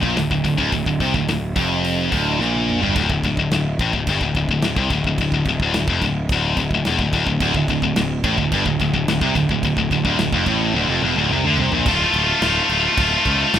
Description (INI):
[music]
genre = heavy metal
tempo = 108 BPM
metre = 4/4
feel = straight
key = D minor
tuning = A4 = 441 Hz
[part]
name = heavy high-gain guitar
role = riff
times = 0.0-13.6 s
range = D2 to F4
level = -19 LUFS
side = left 5 dB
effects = distortion
[part]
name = high-gain distorted guitar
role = riff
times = 0.0-2.9, 7.4-13.6 s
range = D2 to F4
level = -23 LUFS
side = right 14 dB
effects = distortion
[part]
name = fuzz picked electric bass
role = bass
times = 0.0-13.6 s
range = D1 to D2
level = -23 LUFS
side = right 1 dB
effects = overdrive
[part]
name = modern studio drum kit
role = drums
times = 0.0-13.6 s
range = crash cymbal, hi-hat, kick drum, snare drum, toms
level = -26 LUFS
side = right 1 dB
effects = none
[sound]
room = studio reverb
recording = rough home demo mix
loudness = -16 LUFS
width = side -10 dB against mid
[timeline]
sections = 0.0-3.0 A section; 3.0-11.9 B section; 11.9-13.6 C section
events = drum fill 2.4-3.0, 10.7-11.9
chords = 0.0 Dm; 3.0 D5; 11.9 Dm